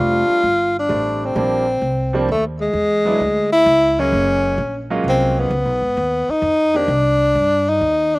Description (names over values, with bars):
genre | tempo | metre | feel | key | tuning
jazz, small-group swing and bop | 130 BPM | 3/4 | swing 68% on 8ths | unclear | A4 = 440 Hz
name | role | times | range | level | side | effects
breathy tenor saxophone | melody | 0.0-8.2 s | Ab3 to F4 | -16 LUFS | left 1 dB | none
clear baby grand piano | accompaniment | 0.0-6.9 s | Eb3 to G#4 | -23 LUFS | right 3 dB | none
upright bass | bass | 0.0-8.2 s | F1 to G2 | -23 LUFS | equal | none
room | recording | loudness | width
little or no reverb | recorded outdoors, with no room sound | -15 LUFS | side -22 dB against mid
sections
0.0-1.4 A section; 1.4-8.2 B section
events
none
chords
0.0 F69; 1.4 Bb69; 2.7 E9; 4.1 Gbmaj9; 5.5 Db9 (rootless); 6.9 Cmadd9